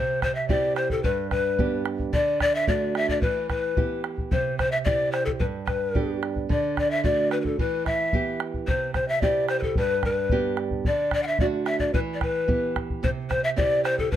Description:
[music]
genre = andean folk, Andean ensemble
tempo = 110 BPM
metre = 2/4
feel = straight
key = unclear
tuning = A4 = 439 Hz
[part]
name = breathy mellow large pan pipes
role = melody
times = 0.0-14.2 s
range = A4 to F#5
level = -24 LUFS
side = left 2 dB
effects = plate reverb
[part]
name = nylon-string guitar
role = accompaniment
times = 0.0-14.2 s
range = G2 to G4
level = -29 LUFS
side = right 6 dB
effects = none
[part]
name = bombo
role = percussion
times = 0.2-14.2 s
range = none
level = -27 LUFS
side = equal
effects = none
[sound]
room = moderate studio reverb, RT60 0.6 s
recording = close, detailed microphones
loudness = -22 LUFS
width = side -11 dB against mid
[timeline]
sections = 0.0-8.7 A section; 8.7-14.2 A section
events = none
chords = 0.0 C; 1.0 G; 2.1 D; 3.2 Em; 4.3 C; 5.4 G; 6.5 D; 7.6 Em; 8.7 C; 9.8 G; 10.9 D; 11.9 Em; 13.0 C

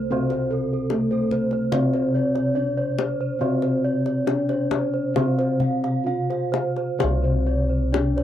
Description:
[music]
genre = Javanese gamelan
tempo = 64-76 BPM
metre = 4/4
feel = straight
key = unclear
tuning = A4 = 440 Hz
[part]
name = gamelan-type bronze metallophone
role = melody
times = 0.0-8.2 s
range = A3+20c to F4+30c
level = -25 LUFS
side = equal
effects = none
[part]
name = gamelan-type bronze metallophone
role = accompaniment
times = 0.0-8.2 s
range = C3 to A3+20c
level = -28 LUFS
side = equal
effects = none
[part]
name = gamelan-type bronze metallophone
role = arpeggios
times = 0.0-8.2 s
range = A4+20c to F5+30c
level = -29 LUFS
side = right 9 dB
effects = none
[part]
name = gamelan-type bossed gongs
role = bass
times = 0.0-8.2 s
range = C2 to D4-50c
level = -28 LUFS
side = left 1 dB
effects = none
[part]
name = gamelan-type bossed gongs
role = arpeggios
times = 0.1-8.2 s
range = A4+20c to F5+30c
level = -29 LUFS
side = left 5 dB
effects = slapback echo
[part]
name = kendang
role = percussion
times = 0.3-8.2 s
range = none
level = -28 LUFS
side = left 8 dB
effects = none
[sound]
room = light reverb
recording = dry, close 1970s-style studio recording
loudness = -20 LUFS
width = side -11 dB against mid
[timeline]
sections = 0.0-7.0 A section; 7.0-8.2 B section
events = none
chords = none

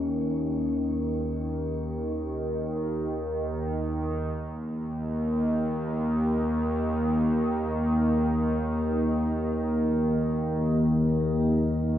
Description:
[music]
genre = world meditative, free-time meditation music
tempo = free time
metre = none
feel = none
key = unclear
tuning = A4 = 443 Hz
[part]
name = analog drone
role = drone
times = 0.0-12.0 s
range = Eb2 to Eb3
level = -27 LUFS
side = right 1 dB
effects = chorus
[part]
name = glass harmonica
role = texture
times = 0.0-12.0 s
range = Bb3 to Db4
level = -27 LUFS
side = left 1 dB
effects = shimmer reverb
[sound]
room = wet studio reverb, RT60 0.5 s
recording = none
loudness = -25 LUFS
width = side -11 dB against mid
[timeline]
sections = 0.0-4.3 A section; 4.3-12.0 A section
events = none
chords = none

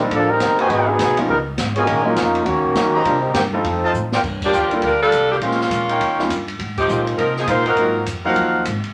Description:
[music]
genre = jazz, big band swing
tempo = 204 BPM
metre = 4/4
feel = swing 62% on 8ths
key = unclear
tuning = A4 = 440 Hz
[part]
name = clear baby grand piano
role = accompaniment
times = 0.0-8.6 s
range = F3 to A4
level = -26 LUFS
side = equal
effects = none
[part]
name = upright bass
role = bass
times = 0.0-8.9 s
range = G1 to Eb3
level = -30 LUFS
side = equal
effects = none
[part]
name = open jazz drum kit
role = drums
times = 0.0-8.9 s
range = crash cymbal, hi-hat, kick drum, ride cymbal, snare drum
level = -29 LUFS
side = equal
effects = none
[part]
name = brilliant trombone section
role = second line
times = 0.1-4.1 s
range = Eb3 to Db5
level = -20 LUFS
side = equal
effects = none
[part]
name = warm trumpet section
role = stabs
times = 0.6-8.6 s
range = Eb4 to Bb5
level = -23 LUFS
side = equal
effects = none
[part]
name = bright saxophone section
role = melody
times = 4.5-8.0 s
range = F3 to C5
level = -20 LUFS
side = equal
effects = none
[sound]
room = wet club reverb, RT60 0.6 s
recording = none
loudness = -18 LUFS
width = mono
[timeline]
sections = 0.0-4.2 A section; 4.2-8.9 B section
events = trombone section solo 0.0-4.2; drum fill 3.9; band accent 4.4, 6.7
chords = 0.0 Cm7; 0.7 Abm7; 1.3 Db7(no3); 1.9 Gb69; 3.1 Cm7; 3.6 F7; 4.2 Gm7; 5.4 Bbm7; 6.0 Eb7; 6.6 Ab13

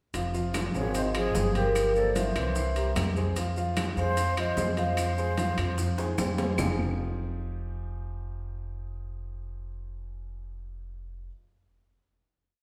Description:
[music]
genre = Afro-Cuban jazz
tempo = 149 BPM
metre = 4/4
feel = straight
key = F minor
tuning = A4 = 442 Hz
[part]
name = clear concert grand piano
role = accompaniment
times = 0.1-11.3 s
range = E3 to F5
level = -36 LUFS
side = equal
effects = none
[part]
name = upright bass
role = bass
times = 0.1-11.3 s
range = F1 to F2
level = -34 LUFS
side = equal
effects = none
[part]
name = bongos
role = percussion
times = 0.1-6.7 s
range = none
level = -43 LUFS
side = equal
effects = none
[part]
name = congas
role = percussion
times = 0.1-6.7 s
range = none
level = -38 LUFS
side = equal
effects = none
[part]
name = maracas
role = percussion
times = 0.1-6.7 s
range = none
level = -46 LUFS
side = equal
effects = none
[part]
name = timbales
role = percussion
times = 0.1-6.7 s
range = none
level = -39 LUFS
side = equal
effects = none
[part]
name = claves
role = percussion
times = 0.5-6.7 s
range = none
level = -45 LUFS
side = equal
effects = none
[part]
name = vibraphone with medium mallets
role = melody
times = 0.8-6.1 s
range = Bb4 to F5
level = -34 LUFS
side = equal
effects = none
[part]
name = breathy concert flute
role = second line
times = 0.8-6.1 s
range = G4 to Db5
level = -36 LUFS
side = equal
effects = none
[sound]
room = wet recital hall reverb, RT60 1.6 s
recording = recorded in a church or concert hall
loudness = -28 LUFS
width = mono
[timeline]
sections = 0.1-6.6 A section; 6.6-9.8 final chord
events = drum fill 6.0-6.6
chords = 0.1 Fmadd9; 1.8 Gm7; 2.6 C7; 3.4 Fm; 6.6 Fm9

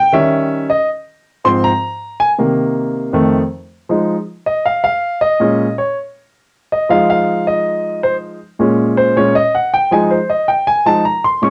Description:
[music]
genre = jazz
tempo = 160 BPM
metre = 4/4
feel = straight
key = F minor from 3.9 s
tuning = A4 = 440 Hz
[part]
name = warm grand piano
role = solo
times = 0.0-11.5 s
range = F2 to Db6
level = -15 LUFS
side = equal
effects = cassette tape
[sound]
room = moderate studio reverb, RT60 0.5 s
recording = home recording on cassette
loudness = -15 LUFS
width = mono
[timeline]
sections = 0.0-3.9 A section; 3.9-11.5 A section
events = grand piano solo 0.0-3.9, 3.9-11.5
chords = 0.1 Eb7b9; 0.9 Ab69; 2.4 Cm7; 3.1 F7; 3.9 Fm7; 5.4 Bbm7; 6.9 Fm7; 8.4 Bbm7; 9.9 Fm7

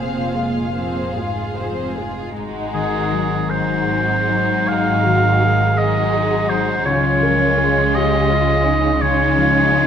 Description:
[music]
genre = classical, slow romantic movement for symphony orchestra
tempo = 48-58 BPM (dotted quarters)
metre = 12/8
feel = rubato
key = unclear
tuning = A4 = 442 Hz
[part]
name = muted symphonic violin section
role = melody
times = 0.0-9.9 s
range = F4 to F5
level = -28 LUFS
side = left 4 dB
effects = none
[part]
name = muted symphonic violin section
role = second line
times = 0.0-9.9 s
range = Ab3 to C5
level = -25 LUFS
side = left 1 dB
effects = none
[part]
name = muted symphonic viola section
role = accompaniment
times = 0.0-9.9 s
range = F3 to Bb4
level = -25 LUFS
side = right 1 dB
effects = none
[part]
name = concert harp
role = arpeggios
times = 0.0-9.9 s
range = Ab2 to Ab4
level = -23 LUFS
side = left 8 dB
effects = none
[part]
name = muted symphonic cello section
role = bass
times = 0.0-9.9 s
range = Ab2 to Db3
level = -25 LUFS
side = right 2 dB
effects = none
[part]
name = muted symphonic double bass section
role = bass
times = 0.0-9.9 s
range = F1 to Db2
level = -25 LUFS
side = right 3 dB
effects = none
[part]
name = warm oboe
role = second line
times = 2.7-9.9 s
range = Ab4 to F5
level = -18 LUFS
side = right 2 dB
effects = none
[sound]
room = wet scoring stage reverb, RT60 1.5 s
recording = none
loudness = -15 LUFS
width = side -8 dB against mid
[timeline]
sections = 0.0-2.4 A section; 2.4-9.9 B section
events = none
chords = 0.0 Fm; 2.4 Ab7; 6.9 Db

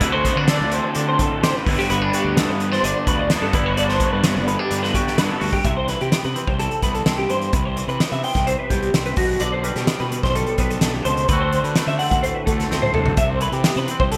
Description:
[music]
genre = math rock and midwest emo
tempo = 128 BPM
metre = 4/4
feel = straight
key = G major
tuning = A4 = 440 Hz
[part]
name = twangy electric guitar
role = accompaniment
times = 0.0-14.2 s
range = D2 to A4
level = -28 LUFS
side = equal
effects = subtle chorus
[part]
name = electric guitar through a small old amp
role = arpeggios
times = 0.0-14.2 s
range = F#4 to G5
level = -25 LUFS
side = equal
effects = ensemble chorus, digital delay
[part]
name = raw garage guitar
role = riff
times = 0.0-5.4 s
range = G2 to F#4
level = -29 LUFS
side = equal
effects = overdrive, analog chorus
[part]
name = fuzz fingered electric bass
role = bass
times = 0.0-14.2 s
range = G1 to D3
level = -28 LUFS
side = equal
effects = overdrive
[part]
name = loose indie drum kit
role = drums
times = 0.0-14.2 s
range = hi-hat, kick drum, snare drum, toms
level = -25 LUFS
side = equal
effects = gated reverb
[sound]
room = moderate lush hall reverb, RT60 2.0 s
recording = bright 1980s-style digital production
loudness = -20 LUFS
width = mono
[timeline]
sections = 0.0-5.7 A section; 5.7-14.2 B section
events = drum fill 12.7-13.2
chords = 0.0 D7; 1.7 Gmaj7; 5.7 Cmaj7; 9.2 G/B; 11.3 D7; 13.2 Cmaj7

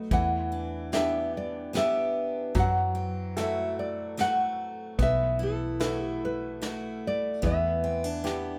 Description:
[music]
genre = acoustic folk-pop ballad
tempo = 74 BPM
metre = 3/4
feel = straight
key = E minor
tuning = A4 = 442 Hz
[part]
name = nylon-string guitar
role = melody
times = 0.0-8.6 s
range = A4 to F#5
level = -32 LUFS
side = equal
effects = none
[part]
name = clear grand piano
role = accompaniment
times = 0.0-8.6 s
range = E3 to D#5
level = -39 LUFS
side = equal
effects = none
[part]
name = picked steel-string acoustic guitar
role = arpeggios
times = 0.0-8.6 s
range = E3 to G4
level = -37 LUFS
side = equal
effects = none
[part]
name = woody fretless electric bass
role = bass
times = 0.0-8.6 s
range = B1 to F#2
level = -35 LUFS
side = equal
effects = none
[part]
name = soft brush drum kit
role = drums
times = 0.1-8.4 s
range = hi-hat, kick drum, snare drum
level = -33 LUFS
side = equal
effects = none
[sound]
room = light reverb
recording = none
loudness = -29 LUFS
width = mono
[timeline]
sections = 0.0-8.6 A section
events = none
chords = 0.1 Em7; 2.6 F#m7b5; 5.0 B7sus4; 7.4 Em7

